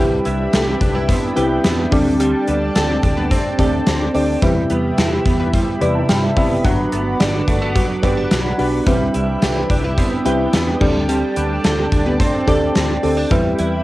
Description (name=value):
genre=1980s-style pop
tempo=108 BPM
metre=4/4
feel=straight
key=unclear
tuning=A4 = 443 Hz
part: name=mellow FM electric piano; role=accompaniment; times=0.0-13.8 s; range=C3 to B5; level=-20 LUFS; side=left 1 dB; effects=chorus, phaser, cassette tape
part: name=chorused pulse-width pad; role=sustained chords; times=0.0-13.8 s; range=D4 to D6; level=-26 LUFS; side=equal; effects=cassette tape
part: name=direct-recorded clean electric guitar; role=riff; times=0.0-13.8 s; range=F#3 to A4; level=-22 LUFS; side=right 2 dB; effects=ensemble chorus, cassette tape
part: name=funky polysynth comp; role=stabs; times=0.0-13.7 s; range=D3 to D5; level=-26 LUFS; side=left 1 dB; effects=chorus, cassette tape
part: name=mellow fretless electric bass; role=bass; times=0.0-13.8 s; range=F#1 to G2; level=-23 LUFS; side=equal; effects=analog chorus
part: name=gated 80s drum kit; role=drums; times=0.3-13.7 s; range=crash cymbal, hi-hat, kick drum, snare drum, tambourine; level=-19 LUFS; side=equal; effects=cassette tape
room=moderate spring reverb, RT60 2.0 s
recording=home recording on cassette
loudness=-14 LUFS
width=side -17 dB against mid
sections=0.0-13.8 A section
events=FM electric piano fill 5.5-6.6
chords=0.0 Cmaj7; 1.9 D7sus4; 4.4 Cmaj7/E; 6.6 Gmaj7; 8.9 Cmaj7; 10.8 D7sus4; 13.3 Cmaj7/E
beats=0.53 1.09 1.65 | 2.20 2.76 3.31 3.87 | 4.42 4.98 5.53 6.09 | 6.64 7.20 7.76 8.31 | 8.87 9.42 9.98 10.53 | 11.09 11.64 12.20 12.76 | 13.31